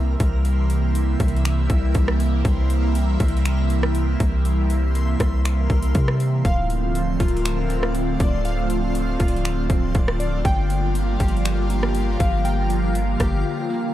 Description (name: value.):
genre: hip hop, atmospheric cloud-rap.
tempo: 120 BPM.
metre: 4/4.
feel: half-time.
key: unclear.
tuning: A4 = 440 Hz.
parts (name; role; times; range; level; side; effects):
airy breathy pad; sustained chords; 0.0-13.9 s; C3 to F4; -25 LUFS; right 2 dB; chorus, phaser, sidechain pumping.
long sustained 808-style bass; bass; 0.0-13.4 s; D1 to C3; -21 LUFS; equal; none.
backwards swelling texture; texture; 0.0-13.9 s; F4 to C6; -35 LUFS; left 1 dB; built-in reverb.
trap drum kit; drums; 0.2-13.3 s; finger snaps, hi-hat, kick drum, rim click; -23 LUFS; equal; overdrive.
glassy digital keys; arpeggios; 6.5-13.9 s; Bb3 to G5; -28 LUFS; left 1 dB; chorus, tape echo.
room: digital ambience.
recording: dark, warm production.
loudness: -18 LUFS.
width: side -13 dB against mid.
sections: 0.0-13.9 A section.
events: break 13.4-13.9.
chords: 0.0 C7; 6.4 Dm7; 10.4 Gm7.